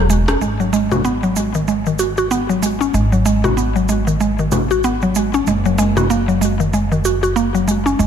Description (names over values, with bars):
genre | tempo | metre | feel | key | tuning
organic downtempo | 95 BPM | 4/4 | swing 58% on 16ths | G# minor | A4 = 440 Hz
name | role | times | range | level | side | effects
mallet-like synth pluck | arpeggios | 0.0-8.1 s | D#3 to F#4 | -16 LUFS | equal | chorus, ping-pong delay
upright bass | bass | 0.0-8.1 s | E1 to G#1 | -20 LUFS | equal | none
deep house drum kit | drums | 0.1-8.1 s | cabasa, congas, hi-hat, rim click | -23 LUFS | left 1 dB | none
room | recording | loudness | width
moderate concert hall reverb, RT60 2.5 s | none | -14 LUFS | side -8 dB against mid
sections
0.4-8.1 A section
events
drum fill 0.0-0.4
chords
0.4 G#m7; 5.5 F#